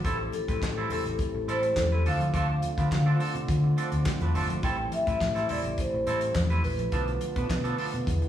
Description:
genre	disco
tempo	105 BPM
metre	4/4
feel	straight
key	A minor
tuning	A4 = 440 Hz
part	twangy electric guitar	accompaniment	0.0-8.3 s	F3 to B4	-34 LUFS	right 3 dB	none
part	mellow French horn section	sustained chords	0.0-8.3 s	D3 to G4	-35 LUFS	right 1 dB	none
part	hollow-body short-scale fingered electric bass	bass	0.0-8.2 s	G1 to D3	-28 LUFS	left 1 dB	none
part	damped 70s drum kit	drums	0.0-8.3 s	handclaps, hi-hat, kick drum, snare drum	-33 LUFS	equal	none
part	congas	percussion	0.0-8.2 s	none	-39 LUFS	left 2 dB	none
part	vibraphone with soft mallets	melody	0.1-8.3 s	A4 to G5	-31 LUFS	equal	none
room	wet large studio reverb, RT60 1.3 s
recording	band playing live in one room, studio reverb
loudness	-25 LUFS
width	side -11 dB against mid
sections	0.0-8.3 A section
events	none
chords	0.0 Am7; 2.1 Dm7; 4.6 Am7; 6.9 Bm7b5

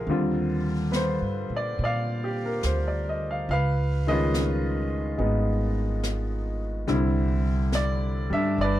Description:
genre	jazz ballad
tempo	70 BPM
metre	4/4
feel	swing 68% on 8ths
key	unclear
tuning	A4 = 440 Hz
part	bright upright piano	accompaniment	0.0-8.8 s	D3 to F5	-26 LUFS	left 1 dB	none
part	upright bass	bass	0.0-8.8 s	G1 to Bb2	-27 LUFS	right 1 dB	none
part	jazz brush drum kit	drums	0.1-8.8 s	brushed snare drum, hi-hat, snare drum	-35 LUFS	left 1 dB	none
room	small room ambience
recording	none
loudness	-24 LUFS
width	side -13 dB against mid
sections	0.0-8.8 A section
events	none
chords	0.1 Ebmaj9; 3.5 Db9; 6.9 Cadd9

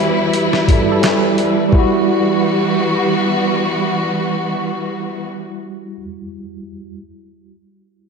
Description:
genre	trip hop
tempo	86 BPM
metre	4/4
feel	swing 54% on 16ths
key	E minor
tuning	A4 = 440 Hz
part	tine electric piano	accompaniment	0.0-7.0 s	G3 to A4	-18 LUFS	right 2 dB	medium stereo tremolo, harmonic tremolo, low-pass filter, tape echo
part	dark studio string section	sustained chords	0.0-5.3 s	E3 to B4	-19 LUFS	left 1 dB	none
part	wind-like tuned noise texture	texture	0.0-1.7 s	B3 to B4	-32 LUFS	right 1 dB	none
part	boom bap sampler-style drum kit	drums	0.3-1.9 s	hi-hat, kick drum, snare drum	-18 LUFS	equal	none
part	tabla	percussion	0.7-1.2 s	none	-27 LUFS	right 2 dB	none
room	wet lush hall reverb, RT60 1.7 s, studio ambience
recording	dreamy mix soaked in reverb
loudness	-14 LUFS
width	side -5 dB against mid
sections	0.0-1.7 A section; 1.7-4.5 B section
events	filter sweep on tine electric piano 0.0-1.7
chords	0.0 Emadd9

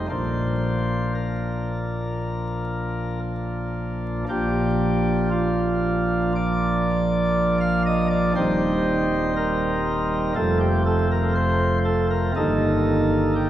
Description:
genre	classical, chorale-style piece for pipe organ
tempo	59 BPM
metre	4/4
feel	uneven beats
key	Bb major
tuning	A4 = 440 Hz
part	pipe organ, sparkling flutes	solo	0.0-13.5 s	Eb1 to F5	-20 LUFS	equal	none
room	wet church reverb, RT60 3.8 s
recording	heard from further back in the room, vinyl crackle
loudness	-20 LUFS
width	side -12 dB against mid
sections	0.0-4.3 A section; 4.3-13.5 B section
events	none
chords	0.1 Bb; 8.4 Cm/Eb; 10.4 F; 12.4 Eb/G

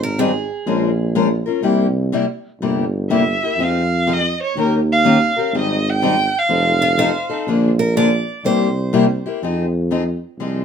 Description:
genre	acoustic string swing (jazz manouche)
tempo	123 BPM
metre	4/4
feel	swing 65% on 8ths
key	F minor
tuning	A4 = 435 Hz
part	picked steel-string acoustic guitar	second line	0.0-1.1, 6.8-9.4 s	F4 to D5	-24 LUFS	right 3 dB	none
part	warm tuba	bass	0.0-10.6 s	F1 to F2	-20 LUFS	right 1 dB	none
part	picked steel-string acoustic guitar	accompaniment	0.2-10.6 s	C3 to Bb4	-18 LUFS	left 4 dB	none
part	warm violin	melody	3.1-7.3 s	Bb4 to G5	-18 LUFS	right 2 dB	none
room	moderate studio reverb, RT60 0.8 s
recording	minimal, uncompressed stereo recording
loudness	-15 LUFS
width	side -7 dB against mid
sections	0.0-10.6 A section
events	none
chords	0.0 Abmaj7; 0.7 Bbm7; 1.6 C7; 3.6 Fm7; 4.6 Eb7; 5.5 Abmaj7; 6.5 F7; 7.5 Bb7; 8.4 C7; 9.4 Fm7

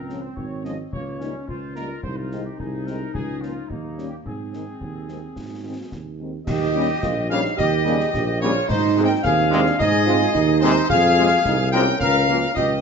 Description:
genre	military-style march for wind band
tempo	108 BPM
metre	2/4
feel	straight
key	Ab major, Eb major from 6.5 s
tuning	A4 = 440 Hz
part	mellow trumpet section	melody	0.0-12.8 s	Eb4 to G5	-28 LUFS	equal	none
part	clear woodwind section	second line	0.0-12.8 s	Bb3 to G5	-26 LUFS	left 3 dB	none
part	mellow tuba	bass	0.0-12.8 s	Ab1 to Ab2	-24 LUFS	right 3 dB	none
part	mellow French horn section	accompaniment	0.1-12.4 s	Eb3 to F4	-28 LUFS	left 4 dB	none
part	concert snare drum, concert bass drum and clash cymbals	drums	0.1-12.8 s	none	-32 LUFS	left 1 dB	none
part	flute section	second line	6.5-12.8 s	Eb4 to Bb4	-26 LUFS	left 3 dB	none
part	mellow euphonium	second line	6.5-12.8 s	C4 to Ab4	-26 LUFS	right 6 dB	none
part	mellow trombone section	sustained chords	6.7-12.4 s	C3 to Bb3	-28 LUFS	equal	none
room	moderate large studio reverb, RT60 1.1 s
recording	nothing above 7.8 kHz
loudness	-18 LUFS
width	side -6 dB against mid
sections	0.0-6.5 A section; 6.5-12.8 B section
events	none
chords	0.0 Db; 0.9 Eb7/Db; 2.0 Ab/C; 3.1 Bbm7/Db; 3.7 Eb7; 4.3 Ab; 6.5 Eb7; 8.7 Ab; 10.9 Fm; 12.0 Bbm/Db

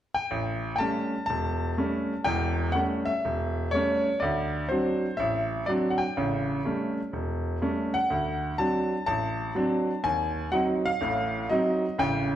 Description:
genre	solo jazz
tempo	123 BPM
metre	4/4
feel	swing 68% on 8ths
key	A mixolydian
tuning	A4 = 445 Hz
part	clear baby grand piano	solo	0.1-12.4 s	E1 to A5	-25 LUFS	equal	none
room	wet large studio reverb, RT60 1.3 s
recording	heard from further back in the room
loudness	-25 LUFS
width	side -11 dB against mid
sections	0.3-12.4 A section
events	none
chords	0.3 A7; 4.2 D7; 6.2 A7; 8.1 D7; 10.0 D#dim7

